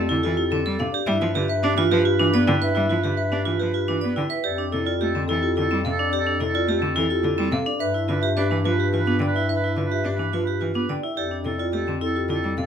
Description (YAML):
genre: classical, minimalist pattern music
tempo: 107 BPM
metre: 3/4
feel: straight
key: F lydian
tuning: A4 = 439 Hz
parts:
  - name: marimba with soft mallets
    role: melody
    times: 0.0-12.7 s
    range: G4 to G5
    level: -27 LUFS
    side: left 7 dB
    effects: none
  - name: clear oboe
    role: second line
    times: 0.0-12.7 s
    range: A4 to B4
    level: -30 LUFS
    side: right 3 dB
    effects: none
  - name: rich cello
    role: accompaniment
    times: 0.0-12.7 s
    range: C3 to D4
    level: -27 LUFS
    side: equal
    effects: none
  - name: vibraphone with hard mallets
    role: arpeggios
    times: 0.0-12.7 s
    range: C4 to D5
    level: -25 LUFS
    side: right 6 dB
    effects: none
  - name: warm bass clarinet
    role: bass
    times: 0.0-12.7 s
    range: F2 to G2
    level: -27 LUFS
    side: left 2 dB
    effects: none
room: moderate large studio reverb, RT60 1.1 s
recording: minimal, uncompressed stereo recording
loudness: -20 LUFS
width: side -8 dB against mid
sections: 0.0-4.4 A section; 4.4-12.7 A section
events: none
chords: 0.0 F69; 1.1 G7; 4.4 F69; 7.8 G7; 11.2 F69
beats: 0.51 | 1.07 1.64 2.20 | 2.76 3.32 3.88 | 4.44 5.00 5.56 | 6.12 6.68 7.24 | 7.80 8.36 8.93 | 9.49 10.05 10.61 | 11.17 11.73 12.29